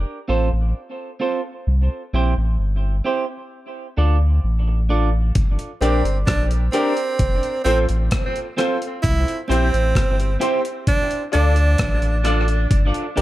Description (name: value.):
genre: dub reggae.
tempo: 65 BPM.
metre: 4/4.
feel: straight.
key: G dorian.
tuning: A4 = 442 Hz.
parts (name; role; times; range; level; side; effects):
warm sub bass; bass; 0.0-13.2 s; F1 to D2; -18 LUFS; equal; none.
clean electric guitar; accompaniment; 0.3-13.2 s; C4 to D5; -25 LUFS; right 3 dB; tape echo.
breakbeat sampler-style drum kit; drums; 5.4-13.2 s; hi-hat, kick drum, rim click; -22 LUFS; equal; overdrive.
bright tenor saxophone; second line; 5.8-12.2 s; C4 to E4; -24 LUFS; right 3 dB; tape echo.
bright upright piano; stabs; 5.8-13.2 s; C4 to D5; -27 LUFS; left 5 dB; tape echo.
room: light reverb, digital ambience.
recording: echo-heavy mix.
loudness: -17 LUFS.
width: side -15 dB against mid.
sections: 0.0-5.4 A section; 5.4-13.2 B section.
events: none.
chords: 0.0 F; 1.7 C; 3.5 Dm; 5.4 Gm; 7.2 F; 9.0 C; 10.9 Dm; 12.7 N.C..